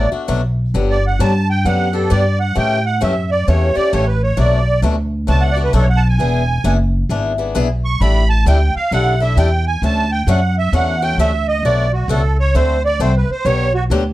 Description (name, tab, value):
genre	acoustic string swing (jazz manouche)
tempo	132 BPM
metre	4/4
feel	swing 63% on 8ths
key	D major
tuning	A4 = 436 Hz
part	musette accordion	melody	0.0-13.8 s	F#4 to C#6	-19 LUFS	right 3 dB	none
part	picked swing-style acoustic guitar	accompaniment	0.0-14.0 s	B2 to A4	-21 LUFS	left 4 dB	none
part	upright bass	bass	0.0-14.1 s	E1 to A2	-16 LUFS	equal	none
room	light reverb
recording	dark, warm production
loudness	-13 LUFS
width	side -16 dB against mid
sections	0.0-11.6 A section; 11.6-14.1 A section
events	accordion solo 0.0-14.1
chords	0.0 Bm7; 0.7 Gmaj7; 2.6 A7; 4.4 Bm7; 6.2 E7; 8.0 A9sus4; 9.8 Dmaj9; 11.6 Bm7; 12.5 D7; 13.4 Gmaj7